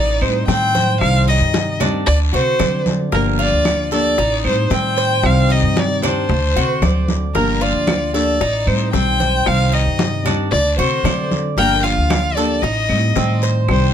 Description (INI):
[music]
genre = latin, Cuban son and guajira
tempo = 114 BPM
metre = 4/4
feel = straight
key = G minor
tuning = A4 = 439 Hz
[part]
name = warm violin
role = melody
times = 0.0-13.9 s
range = Bb4 to G5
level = -19 LUFS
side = left 1 dB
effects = none
[part]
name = Cuban tres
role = arpeggios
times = 0.0-13.9 s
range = Bb3 to D5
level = -24 LUFS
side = right 4 dB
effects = none
[part]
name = upright bass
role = bass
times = 0.0-13.9 s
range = G1 to D3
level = -19 LUFS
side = equal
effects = none
[part]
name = nylon-string guitar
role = accompaniment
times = 0.2-13.9 s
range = C3 to G4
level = -22 LUFS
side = left 3 dB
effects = none
[part]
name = claves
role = percussion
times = 0.2-13.9 s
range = none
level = -30 LUFS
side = right 3 dB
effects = none
[part]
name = congas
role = percussion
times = 0.2-13.9 s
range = none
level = -23 LUFS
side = right 1 dB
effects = none
[part]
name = bongos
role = percussion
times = 0.5-13.9 s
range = none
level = -24 LUFS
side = left 9 dB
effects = none
[part]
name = guiro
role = percussion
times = 0.5-13.9 s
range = none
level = -30 LUFS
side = left 6 dB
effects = none
[sound]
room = light reverb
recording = close, detailed microphones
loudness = -14 LUFS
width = side -9 dB against mid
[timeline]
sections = 0.0-13.9 A section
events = none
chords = 0.0 Am7b5; 1.0 Cm; 2.1 D7; 3.1 Gm7; 4.2 Am7b5; 5.2 Cm; 6.3 D7; 7.4 Gm7; 8.4 Am7b5; 9.5 Cm; 10.5 D7; 11.6 Gm7; 12.6 Am7b5